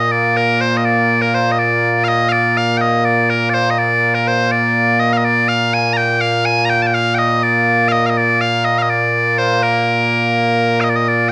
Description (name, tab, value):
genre	scottish traditional, Scottish pipe music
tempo	82 BPM (dotted quarters)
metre	6/8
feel	straight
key	Bb major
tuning	A4 = 440 Hz
part	loud bright bagpipes	solo	0.0-11.3 s	Bb2 to Bb5	-15 LUFS	equal	none
room	moderate spring reverb, RT60 1.5 s, studio ambience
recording	home recording on cassette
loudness	-15 LUFS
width	mono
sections	0.0-11.1 A section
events	none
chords	none